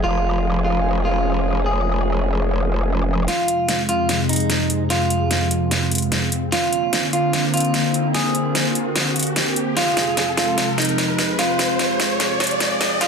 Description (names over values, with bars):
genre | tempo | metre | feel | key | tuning
heavy wobble dubstep | 148 BPM | 4/4 | swing 54% on 16ths, half-time | F minor | A4 = 440 Hz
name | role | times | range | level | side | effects
clean electric guitar | melody | 0.0-13.1 s | Eb4 to Ab4 | -23 LUFS | right 2 dB | digital delay
lush unison pad | sustained chords | 0.0-13.1 s | F2 to Ab4 | -23 LUFS | equal | chorus, phaser
growl bass | bass | 0.0-3.3 s | F1 | -20 LUFS | equal | chorus, overdrive
dubstep drum kit | drums | 3.3-13.1 s | hi-hat, snare drum | -22 LUFS | equal | high-pass filter on snare, low-pass filter on snare, high-pass filter on hats, low-pass filter on hats
riser | sound effects | 5.5-13.1 s | none | -26 LUFS | equal | none
room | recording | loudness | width
moderate digital room reverb, RT60 0.9 s | dense, heavily limited modern master, high-pass filter | -17 LUFS | side -6 dB against mid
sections
0.0-3.3 A section; 3.3-13.1 B section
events
filter sweep on analog synth pad 0.0-3.3, 3.3-13.1; build-up 3.3-13.1; drum fill 3.3-13.1; riser 5.5-13.1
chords
0.0 Db/F; 3.3 Fm; 6.5 Bbadd9; 9.8 Fm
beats
| 0.04 0.44 0.85 1.25 | 1.66 2.06 2.47 2.88 | 3.28 3.69 4.09 4.50 | 4.90 5.31 5.71 6.12 | 6.52 6.93 7.33 7.74 | 8.14 8.55 8.96 9.36 | 9.77 10.17 10.58 10.98 | 11.39 11.79 12.20 12.60 | 13.01